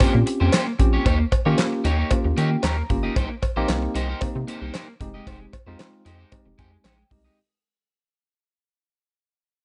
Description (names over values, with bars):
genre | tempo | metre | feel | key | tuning
early-eighties boogie funk | 114 BPM | 4/4 | straight | unclear | A4 = 440 Hz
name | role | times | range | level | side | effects
tine electric piano | accompaniment | 0.0-7.4 s | Ab3 to Bb5 | -29 LUFS | equal | none
electric guitar at the edge of break-up | riff | 0.0-7.4 s | Ab3 to Eb5 | -30 LUFS | equal | lush chorus
rubbery square bass | bass | 0.0-7.3 s | F1 to Eb3 | -25 LUFS | equal | none
damped 70s drum kit | drums | 0.0-7.2 s | handclaps, hi-hat, kick drum, snare drum | -25 LUFS | equal | none
cowbell | percussion | 0.0-7.0 s | none | -32 LUFS | equal | none
room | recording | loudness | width
little or no reverb | nothing above 10.7 kHz | -22 LUFS | mono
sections
0.0-7.4 A section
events
fade-out 0.0-7.4; tine electric piano fill 2.1-3.2, 6.3-7.4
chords
0.0 Bbm69; 1.1 Eb7; 3.2 Cm7; 5.0 Fm9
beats
0.01 0.53 | 1.06 1.58 2.11 2.64 | 3.16 3.69 4.22 4.74 | 5.27 5.79 6.32 6.85